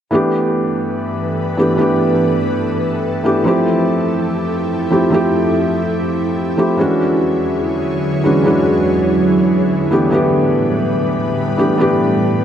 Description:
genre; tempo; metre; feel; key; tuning
future bass; 144 BPM; 4/4; swing 55% on 16ths, half-time; G mixolydian; A4 = 440 Hz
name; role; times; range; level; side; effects
felt-muted upright piano; accompaniment; 0.1-12.4 s; E3 to G4; -14 LUFS; equal; dub echo
ethereal airy pad; sustained chords; 0.6-12.4 s; E2 to C#5; -19 LUFS; equal; ensemble chorus, built-in reverb
room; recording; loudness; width
moderate lush hall reverb, RT60 2.4 s; none; -13 LUFS; side -9 dB against mid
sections
0.1-12.4 A section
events
none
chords
0.1 G69; 3.5 Fmaj9; 6.8 E13; 9.9 A9sus4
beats
| 0.12 0.54 0.96 1.38 | 1.79 2.21 2.62 3.04 | 3.46 3.88 4.29 4.71 | 5.12 5.54 5.96 6.38 | 6.79 7.21 7.62 8.04 | 8.46 8.88 9.29 9.71 | 10.12 10.54 10.96 11.38 | 11.79 12.21

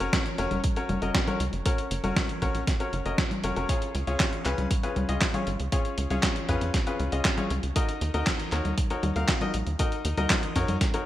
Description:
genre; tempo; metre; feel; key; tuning
italo disco; 118 BPM; 4/4; straight; unclear; A4 = 436 Hz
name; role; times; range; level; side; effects
bright baby grand piano; stabs; 0.0-11.1 s; C#4 to E#5; -30 LUFS; left 3 dB; vintage 12-bit sampler grit, digital delay
tight sequencer bass; bass; 0.0-10.8 s; F#1 to F#2; -31 LUFS; equal; none
dusty soul sampler-style drum kit; drums; 0.0-11.0 s; congas, handclaps, hi-hat, snare drum; -29 LUFS; equal; none
electronic kick drum; drums; 0.1-10.9 s; none; -28 LUFS; equal; none
room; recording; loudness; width
moderate plate reverb, RT60 2.0 s; bright 1980s-style digital production; -24 LUFS; side -13 dB against mid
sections
0.0-11.1 A section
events
none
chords
0.0 F#; 3.7 C#; 7.8 D#m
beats
0.13 0.64 1.15 | 1.66 2.17 2.67 3.18 | 3.69 4.20 4.71 5.22 | 5.72 6.23 6.74 7.25 | 7.76 8.27 8.78 9.29 | 9.79 10.30 10.81

